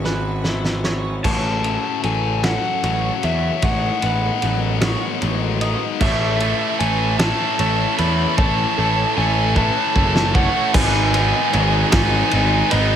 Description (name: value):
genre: post-rock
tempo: 51 BPM (dotted quarters)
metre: 6/8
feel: straight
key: unclear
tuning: A4 = 440 Hz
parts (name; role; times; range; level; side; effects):
- bright studio string section; sustained chords; 0.0-13.0 s; G#3 to C#6; -33 LUFS; left 1 dB; none
- twelve-string electric guitar; arpeggios; 0.0-6.0 s; G#2 to F#4; -30 LUFS; left 2 dB; analog chorus, digital delay
- twelve-string electric guitar; arpeggios; 0.0-13.0 s; A4 to D#5; -31 LUFS; right 6 dB; harmonic tremolo, digital delay
- fuzz picked electric bass; bass; 0.0-13.0 s; F#1 to E2; -21 LUFS; equal; overdrive
- loose indie drum kit; drums; 0.0-12.9 s; crash cymbal, kick drum, ride cymbal, snare drum; -23 LUFS; equal; none
- overdriven slide guitar; melody; 1.2-13.0 s; D#5 to B5; -23 LUFS; left 2 dB; digital delay
- tight distorted guitar; riff; 1.2-13.0 s; F#2 to D#4; -24 LUFS; left 13 dB; distortion
- overdriven electric guitar; riff; 6.0-13.0 s; G#2 to A4; -22 LUFS; right 14 dB; none
room: light reverb, small room ambience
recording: none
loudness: -16 LUFS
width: side -9 dB against mid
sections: 0.0-1.2 A section; 1.2-10.7 B section; 10.7-13.0 C section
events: drum fill 0.1-1.2, 9.6-10.7; build-up 1.2-10.7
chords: 0.0 E6/G#; 1.2 F#m/A; 3.6 G#m7/A; 6.0 A; 10.7 G#m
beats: 0.05 | 1.25 2.44 | 3.63 4.82 | 6.01 7.20 | 8.38 9.57 | 10.75 11.93